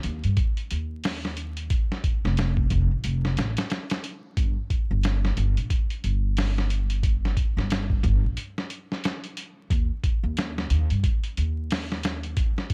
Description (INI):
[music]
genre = trip hop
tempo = 90 BPM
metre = 4/4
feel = swing 60% on 16ths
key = unclear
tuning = A4 = 439 Hz
[part]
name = upright bass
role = bass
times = 0.0-12.3 s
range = F1 to G2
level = -27 LUFS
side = equal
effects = tube saturation
[part]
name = boom bap sampler-style drum kit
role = drums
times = 0.0-12.7 s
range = hi-hat, kick drum, snare drum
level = -28 LUFS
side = equal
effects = vintage 12-bit sampler grit
[sound]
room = little or no reverb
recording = vinyl crackle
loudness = -26 LUFS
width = mono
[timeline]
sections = 0.0-12.7 A section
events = none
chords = none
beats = 0.37 1.03 | 1.70 2.37 3.04 3.70 | 4.37 5.04 5.70 6.37 | 7.04 7.70 8.37 9.04 | 9.70 10.37 11.04 11.70 | 12.37